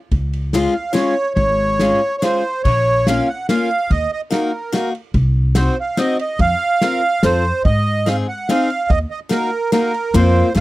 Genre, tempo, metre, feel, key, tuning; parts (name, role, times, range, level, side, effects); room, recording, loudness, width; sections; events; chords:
alpine folk, alpine dance band; 144 BPM; 3/4; rubato; Bb minor; A4 = 439 Hz
upright bass; bass; 0.1-10.6 s; Ab1 to Ab2; -18 LUFS; equal
loose indie drum kit; drums; 0.1-10.6 s; crash cymbal, kick drum, ride cymbal, snare drum; -20 LUFS; equal
picked steel-string acoustic guitar; accompaniment; 0.5-10.6 s; Ab3 to Bb4; -18 LUFS; left 3 dB
accordion; melody; 0.7-10.6 s; Bb4 to Gb5; -18 LUFS; right 2 dB; light tremolo tuning
light reverb; dry, close 1970s-style studio recording; -15 LUFS; side -17 dB against mid
0.0-2.6 A section; 2.6-10.6 B section
0.0 Db; 2.6 Bbm; 3.9 Ebm; 5.1 Cdim; 6.4 Fsus4; 7.2 F; 7.6 Ab; 8.9 Ebm; 10.1 Fsus4